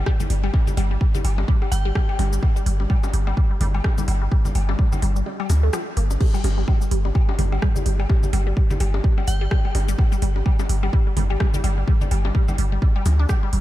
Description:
minimal techno; 127 BPM; 4/4; swing 58% on 16ths; A4 = 439 Hz
punchy sub bass; bass; 0.0-13.6 s; G1 to D2; -20 LUFS; equal; sidechain pumping
resonant blip pluck; riff; 0.1-13.6 s; F3 to G4; -29 LUFS; equal; phaser, sidechain pumping, analog delay
electronic kick drum; drums; 0.1-13.4 s; -19 LUFS; equal
house drum kit; drums; 0.1-13.6 s; crash cymbal, hi-hat, rim click, shaker; -34 LUFS; equal
congas, bongos, cowbell and woodblock; percussion; 0.2-13.4 s; -31 LUFS; left 2 dB; diffuse ambient delay
glassy synth bell; melody; 1.7-2.1, 9.3-9.6 s; G5; -36 LUFS; left 1 dB; chorus, phaser, diffuse ambient delay
digital ambience; -18 LUFS; side -15 dB against mid
0.0-13.6 A section
kick drops out 5.3-6.2
0.06 | 0.54 1.01 1.48 1.95 | 2.43 2.90 3.37 3.84 | 4.32 4.79 5.26 5.73 | 6.21 6.68 7.15 7.62 | 8.10 8.57 9.04 9.51 | 9.98 10.46 10.93 11.40 | 11.88 12.35 12.82 13.29

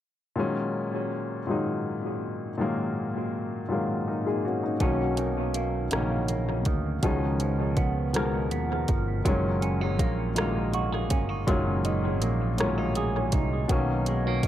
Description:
slow six-eight R&B; 54 BPM (dotted quarters); 6/8; straight; F# major; A4 = 437 Hz
warm baby grand piano; accompaniment; 0.4-14.5 s; A2 to A#4; -28 LUFS; left 2 dB; tape echo
semi-hollow electric guitar; second line; 4.8-14.5 s; B2 to G#4; -32 LUFS; right 6 dB; phaser, tape echo
fretless electric bass; bass; 4.8-14.5 s; F#1 to D#2; -29 LUFS; equal
smooth R&B drum kit; drums; 4.8-14.5 s; hi-hat, kick drum, rim click; -29 LUFS; equal
moderate spring reverb, RT60 1.8 s, digital ambience; echo-heavy mix; -25 LUFS; side -12 dB against mid
0.4-9.3 A section; 9.3-14.5 B section
0.4 F#69; 4.8 Bmaj9; 7.0 C#9; 9.3 F#69; 13.7 Bmaj9
| 0.36 1.47 | 2.58 3.70 | 4.81 5.92 | 7.03 8.14 | 9.25 10.36 | 11.47 12.59 | 13.70

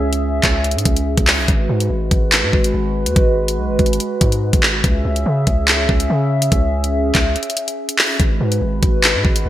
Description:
hip hop, drill; 143 BPM; 4/4; half-time; G# minor; A4 = 442 Hz
hollow soft pad; sustained chords; 0.0-9.5 s; G#3 to E5; -21 LUFS; equal; chorus, tremolo
long sustained 808-style bass; bass; 0.0-9.5 s; G#1 to C#3; -20 LUFS; equal
drill drum kit; drums; 0.1-9.4 s; handclaps, hi-hat, kick drum; -15 LUFS; equal; gated reverb
moderate plate reverb, RT60 1.8 s; bright 1980s-style digital production; -14 LUFS; side -13 dB against mid
0.0-9.5 A section
break 7.4-8.2
0.0 C#m; 1.5 G#m7; 4.8 C#m; 8.2 G#m7
0.23 0.64 1.06 | 1.48 1.90 2.32 2.74 | 3.16 3.58 4.00 4.42 | 4.84 5.26 5.68 6.10 | 6.52 6.94 7.36 7.78 | 8.20 8.62 9.04 9.46

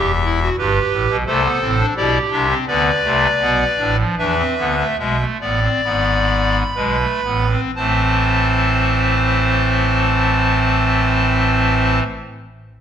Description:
classical, baroque-style 4-part fugue for pipe organ; 58-90 BPM; 4/4; straight; A minor; A4 = 439 Hz
pipe organ, clarinet reed; solo; 0.0-12.0 s; E1 to B5; -15 LUFS; equal
wet recital hall reverb, RT60 1.4 s; -14 LUFS; side -9 dB against mid
0.0-7.7 A section; 7.7-11.9 B section
slowing down 0.0-7.7
0.0 Em; 1.3 C; 2.7 Bm; 4.2 E7; 7.7 Am
0.58 | 1.26 1.96 2.67 3.41 | 4.17 4.98 5.84 6.76 | 7.75 8.78 9.81 10.84

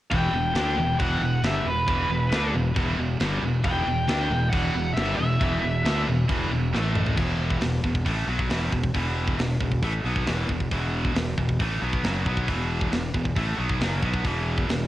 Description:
heavy metal; 136 BPM; 4/4; straight; E minor; A4 = 440 Hz
smooth overdriven lead guitar; melody; 0.1-6.0 s; B4 to G5; -28 LUFS; left 1 dB; cassette tape, analog delay
high-gain distorted guitar; riff; 0.1-14.9 s; E2 to D4; -30 LUFS; left 5 dB; distortion, cassette tape
scooped high-gain guitar; riff; 0.1-14.9 s; E2 to D4; -30 LUFS; right 6 dB; distortion, cassette tape
thick fuzz guitar; riff; 0.1-7.2 s; E2 to D4; -30 LUFS; equal
fuzz fingered electric bass; bass; 0.1-14.9 s; E1 to D2; -28 LUFS; equal; overdrive
tight metal drum kit; drums; 0.1-14.8 s; crash cymbal, hi-hat, kick drum, snare drum, toms; -29 LUFS; equal
small room ambience; home recording on cassette; -22 LUFS; side -14 dB against mid
0.1-7.2 A section; 7.2-14.9 B section
drum fill 6.7-7.2
0.1 Em; 6.7 A5; 7.2 E5
| 0.12 0.56 1.00 1.44 | 1.88 2.32 2.76 3.20 | 3.65 4.09 4.53 4.97 | 5.41 5.85 6.29 6.74 | 7.18 7.62 8.06 8.50 | 8.95 9.39 9.83 10.27 | 10.71 11.16 11.60 12.04 | 12.48 12.92 13.36 13.81 | 14.25 14.69

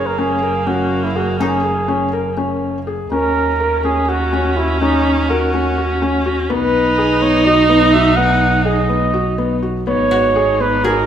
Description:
contemporary instrumental, chamber music in an uneven meter; 248 BPM (eighths); 7/8; straight; A4 = 440 Hz
mellow flugelhorn; melody; 0.0-11.1 s; D#4 to F#5; -18 LUFS; right 2 dB
rich viola; second line; 0.0-11.1 s; A#3 to D#4; -19 LUFS; right 2 dB
felt-muted upright piano; arpeggios; 0.0-11.0 s; B3 to A#4; -20 LUFS; left 5 dB
rich double bass; bass; 0.0-11.1 s; F#1 to D#2; -21 LUFS; right 2 dB
koto; texture; 1.4-3.7, 10.1-11.1 s; D#4 to G#4; -25 LUFS; left 2 dB
wet recital hall reverb, RT60 1.6 s; recorded in a church or concert hall; -13 LUFS; side -9 dB against mid
0.0-3.1 A section; 3.1-11.1 B section
0.0 F#add9; 3.1 D#m7; 6.5 B; 9.9 G#m7
0.19 0.43 0.67 0.91 1.16 | 1.40 1.64 1.88 2.13 2.37 2.62 2.87 | 3.11 3.36 3.60 3.84 4.09 4.33 4.57 | 4.81 5.05 5.30 5.54 5.78 6.02 6.26 | 6.50 6.74 6.98 7.21 7.45 7.69 7.93 | 8.17 8.41 8.65 8.89 9.14 9.38 9.63 | 9.87 10.12 10.36 10.60 10.84

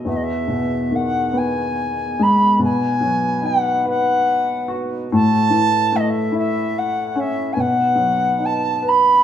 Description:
celtic folk, Celtic slow air; 48 BPM (dotted quarters); 6/8; rubato; E major; A4 = 440 Hz
warm upright piano; accompaniment; 0.0-9.2 s; E2 to B4; -20 LUFS; left 2 dB
bright reedy baroque flute; melody; 0.1-9.2 s; D#5 to B5; -18 LUFS; right 1 dB
warm brass ensemble; sustained chords; 0.1-9.2 s; A2 to B4; -31 LUFS; right 4 dB
wet stone room reverb, RT60 1.0 s; band playing live in one room; -16 LUFS; side -10 dB against mid
0.1-9.2 A section
0.1 Emaj7; 2.6 B; 5.1 F#m7/A; 7.6 B
| 0.07 1.37 | 2.61 3.85 | 5.10 6.33 | 7.57 8.84

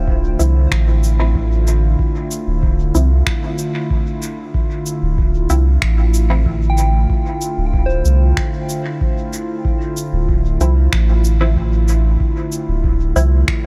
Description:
ambient dub; 94 BPM; 4/4; straight; D minor; A4 = 442 Hz
warbly tape-like pad; sustained chords; 0.0-13.7 s; D3 to F4; -26 LUFS; equal; chorus, built-in reverb
soft synth bell; arpeggios; 0.0-13.7 s; C5 to G5; -32 LUFS; equal; chorus, dub echo
soft dub sub bass; bass; 0.0-13.4 s; D1 to C2; -16 LUFS; equal
electronic kick drum; drums; 0.1-13.6 s; -22 LUFS; equal
filtered dub chord stab; stabs; 0.4-6.4, 10.6-13.3 s; F3 to E4; -28 LUFS; equal; phaser, lush chorus, cassette tape, dub echo
electronic cabasa and finger snaps; drums; 0.4-13.6 s; -28 LUFS; equal; overdrive, dub echo
digital ambience; -16 LUFS; mono
0.0-13.7 A section
0.0 Dm9
0.07 0.71 1.35 | 1.99 2.63 3.27 3.90 | 4.54 5.18 5.82 6.46 | 7.10 7.74 8.37 9.01 | 9.65 10.29 10.93 11.56 | 12.20 12.84 13.48

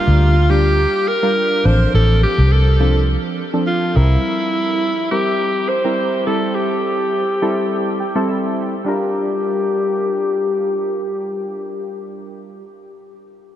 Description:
dance-pop; 104 BPM; 4/4; straight; G dorian; A4 = 440 Hz
bright alto saxophone; melody; 0.0-11.9 s; E4 to C5; -19 LUFS; left 1 dB; low-pass filter, diffuse ambient delay
warm analog keys; accompaniment; 0.0-12.6 s; F3 to G5; -22 LUFS; right 1 dB; chorus, low-pass filter
vintage muted fingered electric bass; bass; 0.1-4.2 s; A1 to D2; -13 LUFS; equal
moderate huge ambient reverb, RT60 7.3 s; dreamy mix soaked in reverb; -15 LUFS; side -11 dB against mid
0.0-8.9 A section; 8.9-11.2 B section
filter sweep 0.0-8.9; synth keys fill 7.7-8.9
0.0 Gm7; 1.6 F6/A; 4.0 C7; 6.3 Am7; 8.9 Gm7
0.21 0.79 1.36 | 1.94 2.52 3.09 3.67 | 4.25 4.82 5.40 5.98 | 6.55 7.13 7.71 8.29 | 8.86 9.44 10.02 10.59

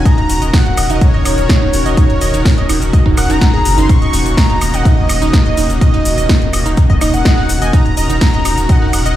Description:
progressive house; 125 BPM; 4/4; straight; A4 = 440 Hz
warm velvety synth lead; melody; 0.0-9.2 s; Db5 to Db6; -21 LUFS; left 1 dB; chorus, dub echo
soft supersaw; second line; 0.0-9.2 s; Db5 to Db6; -25 LUFS; right 1 dB; sidechain pumping, ping-pong delay
supersaw pad; sustained chords; 0.0-9.2 s; Eb3 to Bb4; -21 LUFS; left 1 dB; sidechain pumping
round analog bass; bass; 0.0-9.1 s; Eb1 to Gb1; -16 LUFS; equal; sidechain pumping
glassy wavetable pluck; arpeggios; 0.1-9.2 s; Eb4 to Eb5; -20 LUFS; right 3 dB; chorus, sidechain pumping, ping-pong delay
deep house drum kit; drums; 0.1-9.2 s; hi-hat, shaker, snare drum, woodblock; -19 LUFS; equal; overdrive
electronic kick drum; drums; 0.1-8.8 s; -10 LUFS; equal; overdrive
little or no reverb; played on a big sound system in a bare room, large studio reverb; -10 LUFS; side -13 dB against mid
0.0-9.2 A section
0.1 Gb/Eb; 3.9 Ebm7
| 0.05 0.53 1.01 1.49 | 1.97 2.45 2.93 3.41 | 3.89 4.37 4.85 5.33 | 5.81 6.29 6.77 7.25 | 7.73 8.21 8.69

